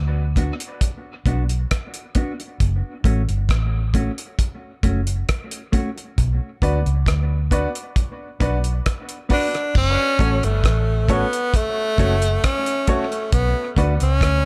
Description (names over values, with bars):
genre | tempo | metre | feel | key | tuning
dub reggae | 67 BPM | 4/4 | straight | F# phrygian | A4 = 439 Hz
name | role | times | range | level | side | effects
vintage muted fingered electric bass | bass | 0.0-14.5 s | F#1 to D2 | -22 LUFS | equal | none
mellow electric guitar | accompaniment | 0.4-13.9 s | A3 to F#4 | -30 LUFS | equal | dub echo
cloth-damped thuddy drum kit | drums | 0.4-14.4 s | crash cymbal, hi-hat, kick drum, rim click | -24 LUFS | equal | none
bright upright piano | stabs | 6.6-13.9 s | F#4 to D5 | -31 LUFS | equal | dub echo
bright tenor saxophone | melody | 9.3-14.5 s | A3 to D4 | -24 LUFS | equal | dub echo
room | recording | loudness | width
studio reverb | none | -21 LUFS | mono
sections
0.0-9.8 A section; 9.8-14.5 B section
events
break 0.0-6.2; filter sweep 0.0-9.8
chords
0.0 Bm; 2.6 F#m; 6.2 Bm; 9.8 F#m; 13.3 Bm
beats
0.81 1.71 | 2.60 3.50 4.39 5.29 | 6.18 7.07 7.97 8.86 | 9.75 10.65 11.54 12.43 | 13.32 14.22